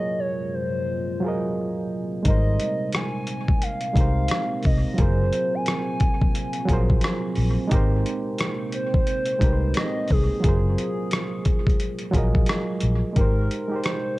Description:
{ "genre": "lo-fi hip hop", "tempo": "88 BPM", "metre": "4/4", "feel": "swing 60% on 16ths", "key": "Ab major", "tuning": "A4 = 439 Hz", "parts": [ { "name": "hollow clarinet-like synth lead", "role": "melody", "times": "0.0-14.2 s", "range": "Ab4 to Ab5", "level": "-29 LUFS", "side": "equal", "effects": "chorus, dub echo" }, { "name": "barky reed electric piano", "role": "accompaniment", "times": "0.0-14.2 s", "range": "Gb3 to Eb5", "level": "-28 LUFS", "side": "right 2 dB", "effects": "overdrive, cassette tape" }, { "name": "deep dark ambient pad", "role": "sustained chords", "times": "0.0-14.2 s", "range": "Gb2 to G5", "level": "-33 LUFS", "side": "right 1 dB", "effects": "chorus, built-in reverb" }, { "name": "dusty soul sampler-style drum kit", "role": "drums", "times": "2.2-14.0 s", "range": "hi-hat, kick drum, rim click", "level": "-23 LUFS", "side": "equal", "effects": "overdrive" }, { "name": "vintage muted fingered electric bass", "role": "bass", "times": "2.3-13.5 s", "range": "Gb1 to C2", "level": "-22 LUFS", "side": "equal", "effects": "none" } ], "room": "light reverb, digital ambience", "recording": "echo-heavy mix", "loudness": "-20 LUFS", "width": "side -19 dB against mid", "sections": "0.0-13.2 A section; 13.2-14.2 B section", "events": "none", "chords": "0.0 Gbmaj9#11; 2.3 Abmaj9; 5.0 Gbmaj9#11; 7.7 Abmaj9; 10.4 Gbmaj9#11; 13.2 Abmaj9" }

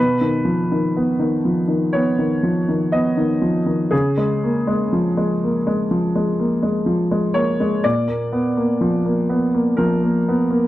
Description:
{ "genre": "neoclassical minimalist piano", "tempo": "61 BPM", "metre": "4/4", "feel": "rubato", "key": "unclear", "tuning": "A4 = 442 Hz", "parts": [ { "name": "clear baby grand piano", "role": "solo", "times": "0.0-10.7 s", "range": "Bb2 to D#5", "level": "-17 LUFS", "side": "equal", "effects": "slapback echo" } ], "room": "light reverb", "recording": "dry, close 1970s-style studio recording", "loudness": "-17 LUFS", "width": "side -15 dB against mid", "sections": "0.0-10.7 A section", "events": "none", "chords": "0.0 Badd9; 3.9 Db; 7.8 Bb" }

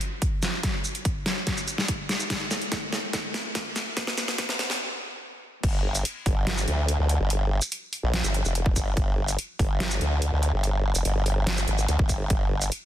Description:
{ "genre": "heavy wobble dubstep", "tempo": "144 BPM", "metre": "4/4", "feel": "half-time", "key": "G phrygian", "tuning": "A4 = 439 Hz", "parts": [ { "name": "dubstep drum kit", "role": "drums", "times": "0.0-12.8 s", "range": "crash cymbal, hi-hat, shaker, snare drum", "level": "-28 LUFS", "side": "equal", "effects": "overdrive" }, { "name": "electronic kick drum", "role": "drums", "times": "0.2-12.4 s", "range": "none", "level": "-27 LUFS", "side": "equal", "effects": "overdrive" }, { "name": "formant-sweep wobble bass", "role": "bass", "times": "5.6-12.7 s", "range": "F1 to D2", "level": "-24 LUFS", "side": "equal", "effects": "chorus, overdrive" } ], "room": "light reverb", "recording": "dense, heavily limited modern master, high-pass filter", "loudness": "-24 LUFS", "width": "side -12 dB against mid", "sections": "0.0-5.6 A section; 5.6-12.8 B section", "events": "build-up 0.0-5.6; drum fill 0.0-4.8; filter sweep 0.0-5.6; stop 4.8-5.6; drop 5.6-12.8", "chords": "none" }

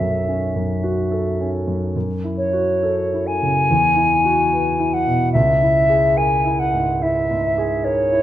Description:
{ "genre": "classical, impressionist duo for flute and grand piano", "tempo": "72 BPM", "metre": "4/4", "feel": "rubato", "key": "C# minor", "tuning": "A4 = 440 Hz", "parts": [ { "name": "silver concert flute", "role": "melody", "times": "0.0-8.2 s", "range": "C#5 to G#5", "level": "-18 LUFS", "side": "left 1 dB", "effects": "none" }, { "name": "warm concert grand piano", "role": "accompaniment", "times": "0.0-8.2 s", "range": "B1 to B4", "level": "-20 LUFS", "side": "right 1 dB", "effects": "none" } ], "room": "moderate recital hall reverb, RT60 1.6 s", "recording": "nothing above 10.5 kHz", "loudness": "-16 LUFS", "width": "side -12 dB against mid", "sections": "0.0-8.2 A section", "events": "none", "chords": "0.0 B9sus4; 2.0 F#m7; 3.7 Eadd9; 5.3 C#m6" }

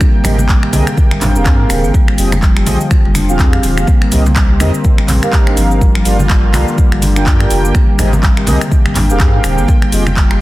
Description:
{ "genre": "afro house", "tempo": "124 BPM", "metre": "4/4", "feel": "swing 58% on 16ths", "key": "unclear", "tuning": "A4 = 445 Hz", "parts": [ { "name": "warm analog pad", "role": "sustained chords", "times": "0.0-10.4 s", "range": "C3 to G5", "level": "-23 LUFS", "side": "equal", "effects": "chorus, tremolo, sidechain pumping" }, { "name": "marimba with soft mallets", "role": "arpeggios", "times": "0.0-10.4 s", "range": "D3 to G4", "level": "-19 LUFS", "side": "left 1 dB", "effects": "sidechain pumping, tape echo" }, { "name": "afro-pop drum kit", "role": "drums", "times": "0.0-10.4 s", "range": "cabasa, finger snaps, handclaps, hi-hat", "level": "-20 LUFS", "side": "equal", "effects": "studio reverb, soft clipping on snare" }, { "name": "electronic kick drum", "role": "drums", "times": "0.0-10.3 s", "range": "none", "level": "-12 LUFS", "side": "equal", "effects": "studio reverb" }, { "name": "congas", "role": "percussion", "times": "0.0-10.1 s", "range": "none", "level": "-21 LUFS", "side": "right 1 dB", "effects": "none" }, { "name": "mellow synth brass", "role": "stabs", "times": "0.2-10.0 s", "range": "C4 to G5", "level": "-20 LUFS", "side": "right 1 dB", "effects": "chorus, cassette tape, sidechain pumping, tape echo" }, { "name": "warm sub bass", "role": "bass", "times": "0.3-10.4 s", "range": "Eb1 to Ab2", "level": "-15 LUFS", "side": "equal", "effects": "sidechain pumping" } ], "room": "little or no reverb", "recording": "dense, heavily limited modern master", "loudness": "-9 LUFS", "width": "side -17 dB against mid", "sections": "0.0-10.4 A section", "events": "none", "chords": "0.0 Abmaj9; 3.9 Cm7; 5.8 Gm7; 7.7 Abmaj9" }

